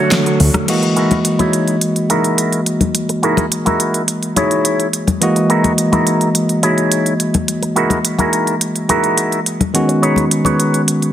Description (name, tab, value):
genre	nu-disco, nu disco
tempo	106 BPM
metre	4/4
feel	straight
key	F# mixolydian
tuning	A4 = 441 Hz
part	barky tine electric piano	accompaniment	0.0-11.1 s	D3 to D#5	-16 LUFS	equal	tape echo
part	electric guitar with an envelope filter	riff	0.0-10.8 s	D4 to C#5	-18 LUFS	equal	wide subtle chorus, low-pass filter, tape echo
part	pop drum kit	drums	0.1-11.1 s	crash cymbal, hi-hat, rim click, snare drum	-18 LUFS	right 2 dB	small room ambience
part	fat analog bass	bass	0.4-0.5 s	D2	-11 LUFS	equal	none
part	congas	percussion	0.5-10.6 s	none	-20 LUFS	left 3 dB	none
room	light reverb, digital ambience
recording	heavily compressed radio sound, multiband compression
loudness	-13 LUFS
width	side -11 dB against mid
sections	0.7-11.1 A section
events	none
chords	0.0 Dmaj7; 0.7 F#13; 9.7 B69